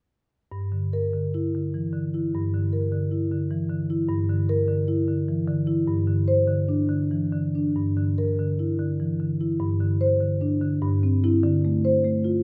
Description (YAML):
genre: classical, contemporary piece for solo marimba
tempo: 99 BPM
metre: 3/4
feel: rubato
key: G dorian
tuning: A4 = 440 Hz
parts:
  - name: marimba with medium mallets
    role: solo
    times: 0.5-12.4 s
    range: G2 to C5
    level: -24 LUFS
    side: equal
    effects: none
room: wet recital hall reverb, RT60 1.5 s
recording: none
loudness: -24 LUFS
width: mono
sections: 0.5-7.8 A section; 7.8-12.4 B section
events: none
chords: 0.5 Gm6; 5.9 Gsus4; 7.8 Gm6; 9.6 Gsus4; 10.8 C/G; 11.4 Dm7